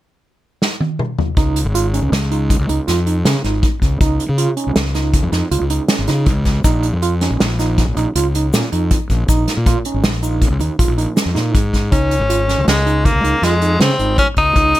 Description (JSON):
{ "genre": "progressive instrumental, band music in an uneven meter", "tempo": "159 BPM", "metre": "7/4", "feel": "straight", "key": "unclear", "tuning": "A4 = 439 Hz", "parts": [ { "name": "unplugged drum kit", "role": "drums", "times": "0.6-14.8 s", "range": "hi-hat, kick drum, snare drum, toms", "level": "-17 LUFS", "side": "equal", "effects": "none" }, { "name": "overdriven tine electric piano", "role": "arpeggios", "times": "1.4-14.8 s", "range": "Db4 to F4", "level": "-22 LUFS", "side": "right 5 dB", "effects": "fast tremolo, ping-pong delay" }, { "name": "fuzz fingered electric bass", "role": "bass", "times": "1.4-14.7 s", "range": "Ab1 to Db3", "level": "-18 LUFS", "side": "equal", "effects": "overdrive" }, { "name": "egg shaker", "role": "percussion", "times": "6.6-11.3 s", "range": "none", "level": "-30 LUFS", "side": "left 10 dB", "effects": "none" }, { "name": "edgy tenor saxophone", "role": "melody", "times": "11.9-14.8 s", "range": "Ab3 to Eb4", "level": "-16 LUFS", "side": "left 2 dB", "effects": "none" } ], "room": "little or no reverb", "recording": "none", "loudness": "-14 LUFS", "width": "side -15 dB against mid", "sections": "0.0-1.4 A section; 1.4-11.9 B section; 11.9-14.8 C section", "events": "drum fill 0.6-1.4", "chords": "0.0 N.C.; 1.4 Dbadd9; 6.7 Bbm; 11.9 Dbadd9", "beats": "0.24 0.62 1.00 | 1.38 1.75 2.13 2.51 2.88 3.26 3.64 | 4.01 4.39 4.77 5.14 5.52 5.90 6.27 | 6.65 7.03 7.40 7.78 8.16 8.53 8.91 | 9.29 9.66 10.04 10.42 10.79 11.17 11.55 | 11.92 12.30 12.68 13.05 13.43 13.81 14.18 | 14.56" }